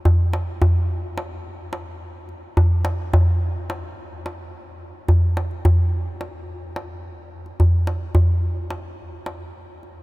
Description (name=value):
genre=turkish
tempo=free time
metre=none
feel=none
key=none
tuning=none
part: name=darbuka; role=percussion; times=0.1-9.9 s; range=none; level=-20 LUFS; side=equal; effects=none
room=light reverb, small room ambience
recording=none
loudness=-18 LUFS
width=side -21 dB against mid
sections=0.0-10.0 A section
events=none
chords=none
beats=free time